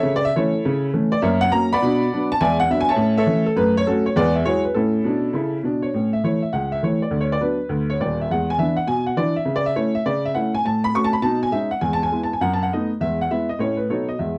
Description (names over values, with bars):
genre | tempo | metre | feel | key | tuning
jazz, stride piano | 203 BPM | 4/4 | swing 66% on 8ths | A major, E major from 10.6 s | A4 = 440 Hz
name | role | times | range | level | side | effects
clear upright piano | solo | 0.0-14.4 s | D#1 to C#6 | -21 LUFS | equal | none
room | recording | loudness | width
moderate studio reverb, RT60 0.5 s | dark, warm production | -21 LUFS | mono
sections
0.0-5.9 A section; 5.9-14.4 A section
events
none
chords
0.0 A/C#; 1.2 F#; 1.8 Bm; 2.4 E9; 3.0 A; 3.6 F#m; 4.2 Eadd9; 4.7 A; 6.5 A/C#; 7.1 Bm/D; 8.3 E7; 8.9 E5/B; 9.5 A/C#; 10.6 F#m/A; 11.2 B69; 11.8 E; 12.4 B7/F#; 13.0 E; 13.6 A; 13.9 B7